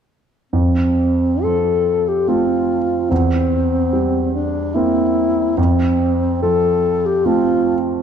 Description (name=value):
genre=classical, romantic duo for alto saxophone and grand piano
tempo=73 BPM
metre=3/4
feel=rubato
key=F major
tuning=A4 = 440 Hz
part: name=dark alto saxophone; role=melody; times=0.5-7.8 s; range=C4 to A4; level=-17 LUFS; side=left 2 dB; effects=none
part: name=warm concert grand piano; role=accompaniment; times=0.5-8.0 s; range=E2 to C4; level=-18 LUFS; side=right 3 dB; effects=none
room=wet scoring stage reverb, RT60 1.6 s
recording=dark, warm production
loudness=-15 LUFS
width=side -8 dB against mid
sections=0.5-8.0 A section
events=none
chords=0.5 F; 3.1 C7/E; 5.6 F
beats=| 0.53 1.44 2.29 | 3.11 3.93 4.75 | 5.58 6.43 7.25